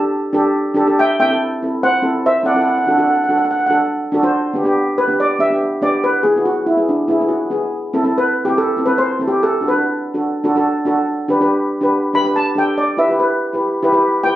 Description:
calypso; 142 BPM; 4/4; straight; G major; A4 = 441 Hz
steel pan; accompaniment; 0.0-14.4 s; B3 to C5; -16 LUFS; equal
steel pan; melody; 1.0-14.4 s; D4 to B5; -16 LUFS; equal
moderate studio reverb, RT60 0.5 s; recorded on a phone in the room, studio reverb; -14 LUFS; side -14 dB against mid
0.0-4.3 A section; 4.3-14.4 B section
steel pan solo 4.3-14.4
0.0 Gsus2; 1.0 Am; 2.7 D; 4.3 G; 6.0 E; 7.7 Am; 9.4 D; 11.1 G; 12.8 Em
0.13 0.55 | 0.97 1.40 1.82 2.24 | 2.66 3.08 3.50 3.92 | 4.35 4.77 5.19 5.61 | 6.03 6.46 6.88 7.30 | 7.72 8.14 8.56 8.99 | 9.41 9.83 10.25 10.67 | 11.09 11.51 11.93 12.36 | 12.78 13.20 13.62 14.04

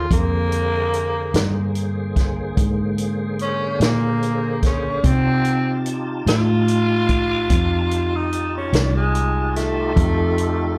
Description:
slow blues; 49 BPM (dotted quarters); 12/8; straight; A4 = 440 Hz
growling tenor saxophone; melody; 0.0-10.8 s; Ab3 to F4; -25 LUFS; equal; plate reverb, slapback echo
tonewheel organ; sustained chords; 0.0-10.8 s; D3 to A5; -30 LUFS; equal; slow rotary speaker, overdrive, chorus vibrato, plate reverb
vintage muted fingered electric bass; bass; 0.0-10.8 s; C2 to C3; -23 LUFS; equal
vintage drum kit; drums; 0.1-10.6 s; hi-hat, kick drum, snare drum; -23 LUFS; equal
light reverb; live gig heard through the venue's PA, club reverb; -20 LUFS; mono
0.0-10.8 A section
tenor saxophone solo 0.0-10.8
0.0 Bb9; 5.0 F9
| 0.10 1.34 2.57 3.81 | 5.04 6.27 7.50 8.73 | 9.97

